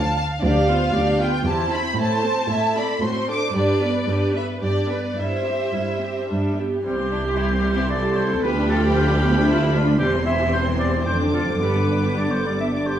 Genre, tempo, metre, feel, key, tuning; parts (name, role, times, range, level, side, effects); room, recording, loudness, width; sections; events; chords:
quick classical-period movement for symphony orchestra; 107-116 BPM; 3/4; rubato; C major; A4 = 442 Hz
clear chamber violin section; melody; 0.0-13.0 s; B4 to D6; -27 LUFS; equal
rich chamber violin section; second line; 0.0-13.0 s; B3 to F5; -27 LUFS; left 1 dB
warm chamber cello section; bass; 0.0-13.0 s; C2 to A2; -24 LUFS; right 1 dB
rich chamber viola section; accompaniment; 0.4-13.0 s; D3 to B4; -24 LUFS; right 1 dB
warm oboe; second line; 6.8-13.0 s; G4 to E5; -26 LUFS; equal
clear chamber double bass section; bass; 6.8-13.0 s; E1 to D2; -25 LUFS; right 2 dB
wet recital hall reverb, RT60 1.4 s; small room ambience; -18 LUFS; side -10 dB against mid
0.0-6.8 A section; 6.8-13.0 B section
0.4 G7/D; 1.5 C/E; 2.0 Am; 3.0 D7/A; 3.6 G; 5.2 C/G; 6.3 G; 6.8 C; 8.4 G7/D; 10.0 C/E; 11.1 Dm7/F; 11.6 G